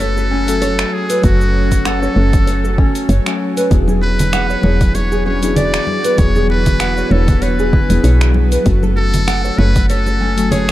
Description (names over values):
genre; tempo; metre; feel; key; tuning
organic downtempo; 97 BPM; 4/4; swing 55% on 16ths; F# minor; A4 = 440 Hz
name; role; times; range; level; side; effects
trumpet with metal mute; melody; 0.0-10.7 s; F#4 to D5; -22 LUFS; equal; digital delay
muted felt-like synth keys; accompaniment; 0.0-10.7 s; D3 to G#5; -21 LUFS; left 3 dB; chorus, sidechain pumping
bowed-like drone; sustained chords; 0.0-10.7 s; E3 to F#4; -25 LUFS; equal; built-in reverb, sidechain pumping
nylon-string guitar; arpeggios; 0.0-10.7 s; C#4 to F#5; -21 LUFS; right 1 dB; tape echo
woody FM bass; bass; 0.0-10.7 s; E1 to B1; -15 LUFS; equal; sidechain pumping
deep house drum kit; drums; 0.0-10.7 s; cabasa, finger snaps, hi-hat; -24 LUFS; equal; none
electronic kick drum; drums; 1.2-9.9 s; none; -14 LUFS; equal; none
congas; percussion; 3.9-10.7 s; none; -23 LUFS; equal; none
room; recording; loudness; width
light reverb, digital ambience; dark, warm production; -12 LUFS; side -15 dB against mid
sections
0.0-10.7 A section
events
none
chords
0.0 F#m; 3.7 E7; 8.7 F#m